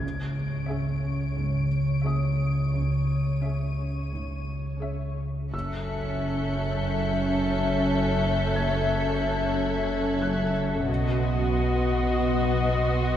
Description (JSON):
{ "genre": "cinematic", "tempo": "89 BPM", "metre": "4/4", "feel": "straight", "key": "F# minor from 5.5 s", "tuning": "A4 = 441 Hz", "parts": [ { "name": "marimba with soft mallets", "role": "riff", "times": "0.0-13.1 s", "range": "F#2 to C#4", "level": "-30 LUFS", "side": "left 1 dB", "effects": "none" }, { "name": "muted studio cello section", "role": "bass", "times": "0.0-13.2 s", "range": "F#2 to C#3", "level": "-33 LUFS", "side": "right 3 dB", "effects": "none" }, { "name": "muted studio double bass section", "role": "bass", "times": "0.0-13.2 s", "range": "F#1 to C#2", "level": "-33 LUFS", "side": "right 2 dB", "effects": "none" }, { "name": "sub bass with octave", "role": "drone", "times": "0.0-13.2 s", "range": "F#1 to C#2", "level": "-32 LUFS", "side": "equal", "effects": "none" }, { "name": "felt-muted upright piano", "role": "texture", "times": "0.0-13.2 s", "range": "D#6 to G#6", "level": "-41 LUFS", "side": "equal", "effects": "none" }, { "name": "muted studio violin section", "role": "texture", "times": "0.0-13.2 s", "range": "C#5 to D7", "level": "-39 LUFS", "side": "left 5 dB", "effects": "none" }, { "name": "muted studio violin section", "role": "melody", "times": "0.7-13.2 s", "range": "D#5 to E5", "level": "-31 LUFS", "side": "left 4 dB", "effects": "none" }, { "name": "muted studio viola section", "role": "accompaniment", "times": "0.7-13.2 s", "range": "B3 to G#4", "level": "-32 LUFS", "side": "equal", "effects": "none" }, { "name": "muted studio violin section", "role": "second line", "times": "5.5-13.2 s", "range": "F#4 to A4", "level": "-31 LUFS", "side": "left 2 dB", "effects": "none" } ], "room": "wet cathedral reverb, RT60 5.7 s", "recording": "recorded in a church or concert hall", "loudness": "-24 LUFS", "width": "side -10 dB against mid", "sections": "0.0-5.5 A section; 5.5-13.2 B section", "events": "none", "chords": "0.0 C#m; 5.5 F#m7; 10.9 B" }